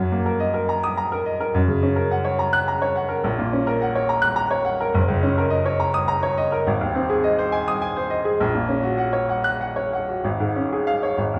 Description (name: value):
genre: classical, virtuoso piano study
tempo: 70 BPM (dotted quarters)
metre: 6/8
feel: rubato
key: unclear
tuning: A4 = 440 Hz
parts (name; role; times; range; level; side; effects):
- bright baby grand piano; solo; 0.0-11.4 s; Gb1 to Gb6; -22 LUFS; equal; none
room: wet recital hall reverb, RT60 1.4 s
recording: heard from further back in the room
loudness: -22 LUFS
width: mono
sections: 0.0-11.4 A section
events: none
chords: 0.0 Ebm/Gb; 1.5 Gb; 3.2 Gb/Bb; 5.0 Ebm7/Gb; 6.7 Ab; 8.4 Gb/Bb; 10.2 Db/Ab